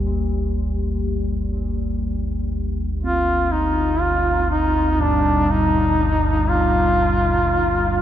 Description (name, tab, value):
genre	dark ambient drone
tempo	free time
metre	none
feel	none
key	unclear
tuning	A4 = 440 Hz
part	old church bells	arpeggios	0.0-8.0 s	G2 to G3	-26 LUFS	left 3 dB	diffuse ambient delay
part	deep rumbling drone	drone	0.0-8.0 s	G1 to D2	-22 LUFS	equal	built-in reverb, phaser, wide subtle chorus
part	bronze singing bowl	texture	0.0-8.0 s	C4 to G4	-34 LUFS	right 2 dB	none
part	warm duduk	melody	3.0-8.0 s	D4 to F4	-18 LUFS	equal	diffuse ambient delay
room	wet huge ambient reverb, RT60 7.4 s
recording	none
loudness	-18 LUFS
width	side -11 dB against mid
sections	0.0-8.0 A section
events	none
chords	0.0 G5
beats	free time